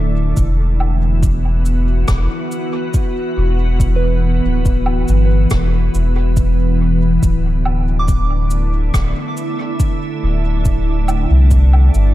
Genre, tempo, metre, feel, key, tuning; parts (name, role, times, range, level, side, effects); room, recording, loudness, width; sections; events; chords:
ambient dub; 70 BPM; 4/4; straight; A4 = 440 Hz
soft additive organ-like pad; sustained chords; 0.0-12.1 s; D3 to F#4; -20 LUFS; equal; ensemble chorus, built-in reverb
soft synth bell; arpeggios; 0.0-12.1 s; B4 to D6; -30 LUFS; right 2 dB; chorus, tape echo
soft dub sub bass; bass; 0.0-12.1 s; D1 to C2; -14 LUFS; equal
cabasa, woodblock and rim click; drums; 0.4-12.1 s; -27 LUFS; equal; dub echo
electronic kick drum; drums; 0.4-11.7 s; -17 LUFS; equal; overdrive
small room ambience; dark, warm production; -13 LUFS; side -15 dB against mid
0.0-12.1 A section
0.4 Esus2; 7.2 D7sus2